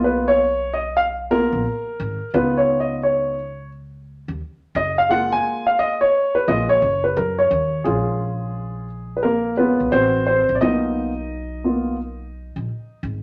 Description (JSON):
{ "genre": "hip hop, jazz-hop", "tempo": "87 BPM", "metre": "4/4", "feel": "swing 63% on 16ths", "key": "G# dorian", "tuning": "A4 = 440 Hz", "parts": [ { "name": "dark upright piano", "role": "accompaniment", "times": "0.0-13.0 s", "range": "G#3 to G#5", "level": "-20 LUFS", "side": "equal", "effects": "none" }, { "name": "upright bass", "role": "bass", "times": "0.0-13.2 s", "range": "F#1 to F#2", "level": "-30 LUFS", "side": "equal", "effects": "none" } ], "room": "wet studio reverb, RT60 0.8 s", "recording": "none", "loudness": "-20 LUFS", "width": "mono", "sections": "0.0-7.9 A section; 7.9-13.2 B section", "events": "upright piano solo 0.0-7.9, 7.9-13.2", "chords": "0.0 G#m69/B (rootless); 2.3 C#9; 4.8 F#maj7; 7.9 A#m7; 9.9 Am69; 10.6 G#m69/B (rootless)", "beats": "0.27 0.96 1.65 | 2.34 3.03 3.72 4.41 | 5.10 5.79 6.48 7.17 | 7.86 8.55 9.24 9.93 | 10.62 11.30 11.99 12.69" }